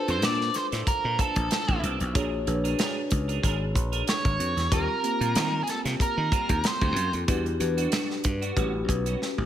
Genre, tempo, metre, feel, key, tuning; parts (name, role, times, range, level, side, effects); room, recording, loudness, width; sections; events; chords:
polished 1980s jazz-funk pop; 94 BPM; 4/4; swing 54% on 16ths; A4 = 440 Hz
octave-fuzz lead guitar; melody; 0.0-7.1 s; Ab4 to D5; -29 LUFS; right 1 dB; distortion
mellow tine electric piano; accompaniment; 0.0-9.5 s; Bb3 to C#5; -31 LUFS; left 2 dB; slow stereo tremolo, analog chorus
clean electric guitar; riff; 0.1-9.4 s; G3 to Bb4; -35 LUFS; right 6 dB; analog chorus
slap bass; bass; 0.1-9.5 s; Ab1 to Eb3; -28 LUFS; equal
modern studio drum kit; drums; 0.1-9.5 s; hi-hat, kick drum, snare drum, toms; -28 LUFS; equal
light reverb, studio reverb; -24 LUFS; side -10 dB against mid
0.0-9.5 A section
drum fill 9.2
0.0 Bbmaj7; 2.2 Bb7alt; 4.7 Eb69; 7.3 Em9; 8.6 A13